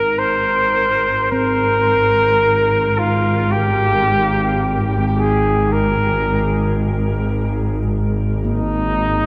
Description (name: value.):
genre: ambient.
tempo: free time.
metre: none.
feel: none.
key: Ab major.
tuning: A4 = 440 Hz.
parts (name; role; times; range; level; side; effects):
clear flugelhorn; melody; 0.0-9.3 s; Eb4 to C5; -19 LUFS; equal; tape echo.
rich symphonic double bass section; bass; 0.0-9.3 s; Ab1; -21 LUFS; equal; none.
handpan; arpeggios; 1.3-9.3 s; Bb3 to C4; -32 LUFS; equal; tape echo.
room: wet huge ambient reverb, RT60 7.7 s.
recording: none.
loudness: -17 LUFS.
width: mono.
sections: 0.0-9.3 A section.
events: none.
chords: 0.0 Ab.